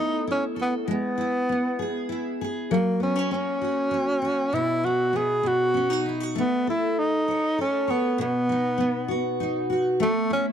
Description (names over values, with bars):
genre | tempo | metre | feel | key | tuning
pop | 66 BPM (dotted quarters) | 6/8 | straight | E major | A4 = 441 Hz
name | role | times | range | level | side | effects
breathy tenor saxophone | melody | 0.0-10.5 s | A3 to G#4 | -24 LUFS | equal | tape echo
picked steel-string acoustic guitar | accompaniment | 0.0-10.5 s | B2 to C#5 | -26 LUFS | equal | double-tracked left and right
room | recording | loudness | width
moderate small room reverb, RT60 0.5 s | dry, close 1970s-style studio recording | -22 LUFS | side -8 dB against mid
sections
0.0-10.5 A section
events
none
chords
0.0 Asus2; 0.9 E/G#; 2.7 F#; 4.5 E5/B; 5.4 B; 6.4 A; 8.2 B; 10.0 Asus2